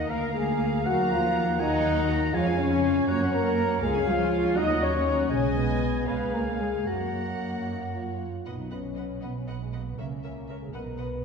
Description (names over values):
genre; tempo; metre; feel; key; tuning
quick classical-period movement for symphony orchestra; 80 BPM (dotted quarters); 6/8; rubato; F# major; A4 = 439 Hz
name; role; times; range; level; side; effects
muted chamber violin section; melody; 0.0-11.1 s; E5 to A#5; -40 LUFS; left 2 dB; none
clear oboe; second line; 0.0-8.0 s; D#5 to A#5; -36 LUFS; right 2 dB; none
mellow hollow concert flute; second line; 0.0-8.2 s; B4 to D#6; -36 LUFS; equal; none
muted studio violin section; second line; 0.0-11.1 s; A#4 to F#5; -41 LUFS; left 1 dB; none
warm clarinet; second line; 0.0-8.2 s; C#5 to F#5; -38 LUFS; left 2 dB; none
dark bassoon; accompaniment; 0.0-8.2 s; F#3 to A#3; -35 LUFS; equal; none
muted chamber viola section; accompaniment; 0.0-11.1 s; F#3 to B4; -36 LUFS; equal; none
clear French horn section; sustained chords; 0.0-11.2 s; G#3 to D#5; -29 LUFS; left 2 dB; none
muted chamber cello section; bass; 0.0-11.2 s; B2 to D#4; -31 LUFS; equal; none
muted chamber double bass section; bass; 0.0-11.2 s; B1 to F#2; -32 LUFS; right 3 dB; none
room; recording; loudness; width
wet scoring stage reverb, RT60 1.5 s; heard from further back in the room; -24 LUFS; side -5 dB against mid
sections
0.0-8.5 A section; 8.5-11.2 B section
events
none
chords
0.1 A#7/D; 0.9 D#m; 2.3 C#/E#; 3.1 F#; 3.8 C#; 4.6 D#m; 5.3 G#m/B; 6.1 C#7; 6.9 F#; 8.5 B; 10.0 A#dim/C#; 10.7 B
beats
0.10 | 0.86 1.59 | 2.33 3.08 | 3.83 4.57 | 5.31 6.08 | 6.87 7.66 | 8.46 9.22 | 9.98 10.73